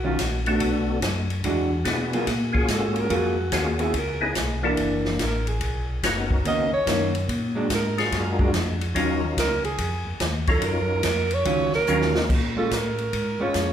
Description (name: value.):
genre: soul jazz organ trio.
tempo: 144 BPM.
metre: 4/4.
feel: swing 66% on 8ths.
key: Eb minor.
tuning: A4 = 442 Hz.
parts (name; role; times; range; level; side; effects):
breathy alto saxophone; melody; 0.0-13.7 s; Gb4 to D#5; -27 LUFS; right 2 dB; none.
vintage hollow-body jazz guitar; accompaniment; 0.0-13.7 s; Eb3 to G#4; -27 LUFS; right 1 dB; none.
mellow tonewheel organ; bass; 0.0-13.7 s; Gb1 to B2; -28 LUFS; equal; chorus vibrato, slow rotary speaker.
swinging big-band drum kit; drums; 0.2-13.7 s; crash cymbal, hi-hat, kick drum, ride cymbal, snare drum; -27 LUFS; left 1 dB; none.
percussive tonewheel organ; melody; 0.5-12.3 s; Gb3 to A#4; -28 LUFS; left 2 dB; slow rotary speaker, chorus vibrato.
room: wet recital hall reverb, RT60 1.5 s.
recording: recorded in a church or concert hall.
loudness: -21 LUFS.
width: side -9 dB against mid.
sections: 0.0-12.3 A section; 12.3-13.7 A section.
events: alto saxophone solo 0.0-13.7; drum fill 11.9-12.3.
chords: 0.0 Ebm9; 0.6 Bm7; 1.4 E9; 2.3 Gbmaj9; 3.9 Dbm7; 4.8 Gb7alt; 5.6 Bmaj9; 7.3 Bb7b13; 9.0 Ebm9; 12.3 Bbm7.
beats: 0.19 | 0.61 1.02 1.44 1.86 | 2.27 2.69 3.11 3.53 | 3.94 4.36 4.78 5.20 | 5.61 6.03 6.45 6.87 | 7.28 7.70 8.12 8.54 | 8.95 9.37 9.79 10.21 | 10.62 11.04 11.46 11.88 | 12.29 12.71 13.13 13.55.